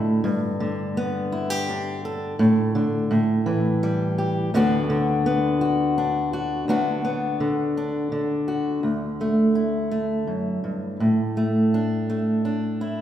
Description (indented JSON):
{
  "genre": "folk",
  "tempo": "84 BPM",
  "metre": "3/4",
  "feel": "straight",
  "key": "D major",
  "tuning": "A4 = 441 Hz",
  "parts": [
    { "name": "fingerpicked steel-string acoustic guitar", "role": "solo", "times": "0.0-13.0 s", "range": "D2 to A4", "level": "-21 LUFS", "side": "equal", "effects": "none" }
  ],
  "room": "wet recital hall reverb, RT60 1.6 s",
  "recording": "recorded in a church or concert hall",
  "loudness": "-21 LUFS",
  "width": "side -10 dB against mid",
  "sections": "0.0-6.7 A section; 6.7-8.8 B section; 8.8-13.0 C section",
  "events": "none",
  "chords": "0.2 G; 2.4 Asus4; 3.1 A5; 4.5 D6; 8.8 Dadd9; 11.0 Asus4"
}